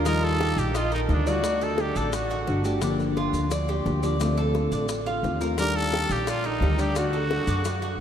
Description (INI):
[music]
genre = latin, Cuban son and guajira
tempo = 174 BPM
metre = 4/4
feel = straight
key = unclear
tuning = A4 = 439 Hz
[part]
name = nylon-string guitar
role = accompaniment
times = 0.0-7.7 s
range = D3 to G4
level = -28 LUFS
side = left 2 dB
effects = none
[part]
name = Cuban tres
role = arpeggios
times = 0.0-8.0 s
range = D4 to Eb5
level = -30 LUFS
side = right 2 dB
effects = none
[part]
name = upright bass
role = bass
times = 0.0-8.0 s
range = G1 to F#2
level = -28 LUFS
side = equal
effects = none
[part]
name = growling trumpet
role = melody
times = 0.1-2.7, 5.6-8.0 s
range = D4 to Bb4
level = -30 LUFS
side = right 1 dB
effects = none
[part]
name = bongos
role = percussion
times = 0.1-8.0 s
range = none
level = -35 LUFS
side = left 5 dB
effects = none
[part]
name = maracas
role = percussion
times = 0.1-8.0 s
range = none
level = -41 LUFS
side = left 5 dB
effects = none
[sound]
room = wet cathedral reverb, RT60 5.9 s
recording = in a vast, echoing space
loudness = -22 LUFS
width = side -9 dB against mid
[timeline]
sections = 0.0-8.0 A section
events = none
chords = 0.1 Ebadd9; 1.4 D; 2.8 Gm7; 4.2 Dm7; 5.6 Ebmaj7; 7.0 D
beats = | 0.06 0.41 0.75 1.10 | 1.44 1.79 2.13 2.48 | 2.82 3.17 3.51 3.85 | 4.20 4.54 4.89 5.24 | 5.58 5.92 6.27 6.61 | 6.96 7.30 7.65 7.99